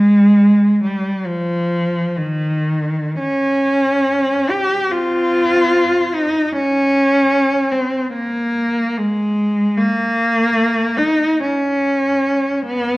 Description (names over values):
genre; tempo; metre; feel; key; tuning
classical, free, expressive piece for unaccompanied cello; free time; none; none; Ab major; A4 = 439 Hz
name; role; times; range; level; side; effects
rich cello; solo; 0.0-13.0 s; Eb3 to G4; -14 LUFS; equal; none
room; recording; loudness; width
wet recital hall reverb, RT60 1.4 s; worn, warbling old tape, cassette tape, warbly pitch drift; -14 LUFS; side -20 dB against mid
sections
0.0-13.0 A section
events
none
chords
none